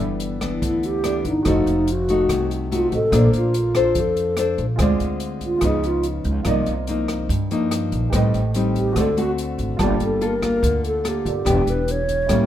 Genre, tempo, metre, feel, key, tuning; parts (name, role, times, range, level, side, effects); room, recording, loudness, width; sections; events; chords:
bossa nova; 144 BPM; 4/4; straight; G minor; A4 = 440 Hz
nylon-string guitar; accompaniment; 0.0-12.5 s; G2 to C5; -22 LUFS; left 3 dB
warm baby grand piano; accompaniment; 0.0-12.5 s; Bb3 to A5; -29 LUFS; right 5 dB
upright bass; bass; 0.0-12.5 s; E1 to G2; -24 LUFS; right 1 dB
open jazz drum kit; drums; 0.2-12.4 s; hi-hat, kick drum, rim click; -28 LUFS; right 1 dB
mellow hollow alto flute; melody; 0.7-6.1, 8.8-12.5 s; Eb4 to C#5; -22 LUFS; right 1 dB
light reverb; minimal, uncompressed stereo recording; -18 LUFS; side -11 dB against mid
0.0-12.5 A section
alto flute solo 0.0-12.5
0.0 G6; 1.5 F7b9; 3.1 Bbmaj9; 4.8 Dm7b5; 5.6 C#9; 6.5 Cm11; 8.1 Am7b5; 9.0 D7; 9.8 Gm9; 11.5 Em7